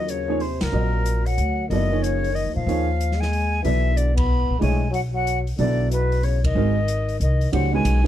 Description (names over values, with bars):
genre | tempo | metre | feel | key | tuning
modal jazz | 186 BPM | 3/4 | swing 64% on 8ths | unclear | A4 = 440 Hz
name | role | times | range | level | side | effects
silver concert flute | melody | 0.0-8.0 s | Bb4 to B5 | -26 LUFS | left 2 dB | none
growling trombone | second line | 0.0-8.1 s | Bb2 to B3 | -30 LUFS | left 5 dB | none
warm upright piano | accompaniment | 0.0-8.1 s | D#3 to Eb5 | -26 LUFS | right 5 dB | none
upright bass | bass | 0.0-8.1 s | Gb1 to Bb2 | -22 LUFS | equal | none
open jazz drum kit | drums | 0.1-7.9 s | hi-hat, kick drum, ride cymbal, snare drum | -31 LUFS | equal | none
room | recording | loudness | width
little or no reverb | dark, warm production | -19 LUFS | side -12 dB against mid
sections
0.0-7.5 A section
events
band accent 0.6, 4.1, 6.4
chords
0.0 Ebm11; 3.6 Bm11; 6.6 Ab7; 7.5 C#m9